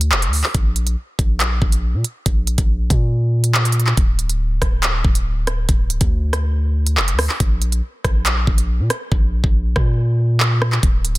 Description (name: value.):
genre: hip hop, drill.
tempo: 140 BPM.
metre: 4/4.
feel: half-time.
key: D minor.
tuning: A4 = 443 Hz.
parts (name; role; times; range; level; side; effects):
long sustained 808-style bass; bass; 0.0-11.2 s; C#1 to Bb2; -18 LUFS; equal; none.
drill drum kit; drums; 0.0-11.2 s; handclaps, hi-hat, kick drum, rim click; -18 LUFS; equal; none.
room: little or no reverb.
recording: dense, heavily limited modern master.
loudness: -16 LUFS.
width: side -18 dB against mid.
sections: 0.0-4.0 A section; 4.0-11.2 B section.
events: hi-hats muted 9.1-10.8.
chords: none.